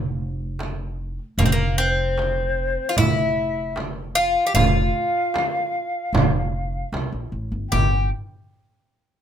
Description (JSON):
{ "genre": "Turkish makam ensemble", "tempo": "76 BPM", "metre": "4/4", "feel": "straight", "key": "unclear", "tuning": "A4 = 440 Hz", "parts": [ { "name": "upright bass", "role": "bass", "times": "0.0-8.1 s", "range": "F1 to C2", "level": "-25 LUFS", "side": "equal", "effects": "none" }, { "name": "darbuka", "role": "percussion", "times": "0.2-8.1 s", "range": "none", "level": "-26 LUFS", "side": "right 5 dB", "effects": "none" }, { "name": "frame drum", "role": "percussion", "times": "0.6-8.1 s", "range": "none", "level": "-25 LUFS", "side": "right 2 dB", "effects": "none" }, { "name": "Greek bouzouki", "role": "melody", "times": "1.4-8.1 s", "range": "Bb3 to G4", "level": "-24 LUFS", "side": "left 1 dB", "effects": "none" }, { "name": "breathy ney", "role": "second line", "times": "1.4-8.1 s", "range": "Bb4 to G5", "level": "-25 LUFS", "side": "left 2 dB", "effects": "none" } ], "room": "light reverb", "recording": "minimal, uncompressed stereo recording", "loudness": "-20 LUFS", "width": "side -9 dB against mid", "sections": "0.0-7.7 A section; 7.7-9.2 B section", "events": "none", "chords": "none", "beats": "0.60 | 1.39 2.18 2.97 3.76 | 4.55 5.34 6.13 6.92 | 7.71" }